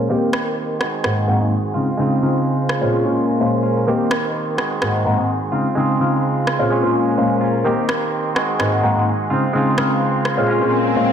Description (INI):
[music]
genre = filtered disco house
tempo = 127 BPM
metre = 4/4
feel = straight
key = unclear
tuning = A4 = 440 Hz
[part]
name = warm grand piano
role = accompaniment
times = 0.0-11.1 s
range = Ab2 to C5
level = -18 LUFS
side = left 1 dB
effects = phaser, low-pass filter
[part]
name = rich chamber violin section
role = sustained chords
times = 0.0-11.1 s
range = C4 to C6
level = -26 LUFS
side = right 1 dB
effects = low-pass filter
[part]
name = direct-recorded clean electric guitar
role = riff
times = 0.0-11.1 s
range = Eb3 to G4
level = -24 LUFS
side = right 4 dB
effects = low-pass filter
[part]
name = electronic rim click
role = drums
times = 0.3-10.3 s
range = none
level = -24 LUFS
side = right 1 dB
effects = overdrive
[part]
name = swell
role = sound effects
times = 10.6-11.1 s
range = none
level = -21 LUFS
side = left 2 dB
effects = none
[sound]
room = moderate lush hall reverb, RT60 2.1 s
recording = none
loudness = -16 LUFS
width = side -8 dB against mid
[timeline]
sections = 0.0-11.1 A section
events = filter sweep 0.0-11.1; swell 10.6-11.1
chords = 0.1 Cm7; 0.8 Ab7; 1.7 Dbmaj7; 2.9 Bbm7; 3.9 Cm7; 4.6 Ab7; 5.5 Dbmaj7; 6.7 Bbm7; 7.7 Cm7; 8.4 Ab7; 9.3 Dbmaj7; 10.5 Bbm7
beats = | 0.10 0.57 1.04 1.51 | 1.99 2.46 2.93 3.40 | 3.88 4.35 4.82 5.29 | 5.76 6.24 6.71 7.18 | 7.65 8.13 8.60 9.07 | 9.54 10.02 10.49 10.96